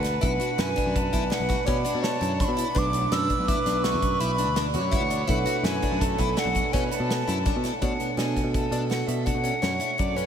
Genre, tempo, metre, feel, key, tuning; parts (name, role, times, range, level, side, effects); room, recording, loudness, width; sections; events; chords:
progressive instrumental, band music in an uneven meter; 166 BPM; 7/4; straight; B dorian; A4 = 441 Hz
bright wooden flute; melody; 0.0-10.1 s; E5 to E6; -29 LUFS; equal; diffuse ambient delay
clear alto saxophone; second line; 0.0-10.3 s; A4 to D5; -31 LUFS; right 2 dB; diffuse ambient delay
tine electric piano; accompaniment; 0.0-10.3 s; B2 to C#5; -33 LUFS; right 3 dB
picked plugged-in twelve-string acoustic guitar; arpeggios; 0.0-10.3 s; B3 to F#4; -32 LUFS; left 3 dB; wide subtle chorus
picked electric bass; bass; 0.0-10.2 s; B1 to B2; -29 LUFS; equal
natural country drum kit; drums; 0.0-10.3 s; hi-hat, kick drum, snare drum; -29 LUFS; equal
wet huge ambient reverb, RT60 7.8 s; dreamy mix soaked in reverb; -22 LUFS; side -8 dB against mid
0.0-7.8 A section; 7.8-10.3 B section
0.0 Bm7; 7.8 Bm9